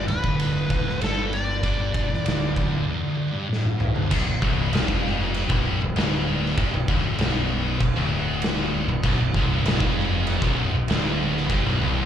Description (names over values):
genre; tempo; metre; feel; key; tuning
stoner and doom metal; 97 BPM; 4/4; straight; B minor; A4 = 440 Hz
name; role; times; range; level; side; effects
fuzz lead guitar; melody; 0.0-3.5 s; A4 to D5; -30 LUFS; left 1 dB; wah, distortion, slapback echo, digital delay
thick fuzz guitar; riff; 0.0-12.1 s; B1 to A2; -28 LUFS; left 6 dB; distortion
thick fuzz guitar; riff; 0.0-4.1, 9.0-12.1 s; B1 to A2; -28 LUFS; right 6 dB; distortion, slapback echo
fuzz fingered electric bass; bass; 0.0-12.1 s; B0 to A1; -28 LUFS; equal; overdrive
oversized low-tuned drum kit; drums; 0.1-11.6 s; crash cymbal, kick drum, ride cymbal, snare drum, toms; -25 LUFS; equal; none
scooped high-gain guitar; riff; 4.1-12.1 s; B1 to G2; -26 LUFS; equal; distortion, slapback echo
room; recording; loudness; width
light reverb; live gig heard through the venue's PA, club reverb; -21 LUFS; side -9 dB against mid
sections
0.0-4.1 A section; 4.1-12.1 B section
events
drum fill 3.5-4.1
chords
0.0 D5; 4.1 Bm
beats
0.39 1.01 | 1.63 2.25 2.87 3.48 | 4.10 4.72 5.34 5.96 | 6.57 7.19 7.81 8.42 | 9.04 9.66 10.27 10.88 | 11.50